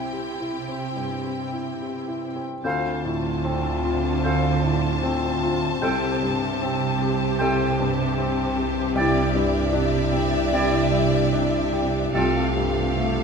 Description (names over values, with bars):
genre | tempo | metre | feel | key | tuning
cinematic | 76 BPM | 4/4 | uneven beats, rubato | C major | A4 = 444 Hz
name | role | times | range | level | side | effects
rich symphonic violin section | second line | 0.0-13.2 s | G4 to G5 | -32 LUFS | left 1 dB | none
felt-muted upright piano | accompaniment | 0.0-13.2 s | C2 to G4 | -27 LUFS | left 3 dB | none
warm symphonic viola section | accompaniment | 0.0-13.2 s | C4 to G4 | -32 LUFS | equal | none
warm symphonic cello section | bass | 0.0-13.2 s | C3 to D3 | -29 LUFS | right 6 dB | none
mellow clarinet | second line | 2.6-12.5 s | E4 to A4 | -32 LUFS | left 1 dB | none
warm oboe | second line | 2.6-12.5 s | A4 to D5 | -32 LUFS | right 3 dB | none
clear French horn section | sustained chords | 2.6-13.2 s | A3 to G4 | -28 LUFS | left 6 dB | none
warm studio double bass section | bass | 2.6-13.2 s | C2 to D2 | -28 LUFS | right 5 dB | none
warm symphonic violin section | melody | 2.7-13.2 s | E5 to A5 | -31 LUFS | left 3 dB | none
silver concert flute | second line | 2.7-12.5 s | F5 to G5 | -31 LUFS | right 1 dB | none
room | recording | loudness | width
moderate scoring stage reverb, RT60 1.8 s | minimal, uncompressed stereo recording | -21 LUFS | side -6 dB against mid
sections
0.0-2.6 A section; 2.6-13.2 A section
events
none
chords
0.0 C; 2.6 Dm7; 5.8 Am7/C; 9.0 Cadd9; 12.2 Fadd9/C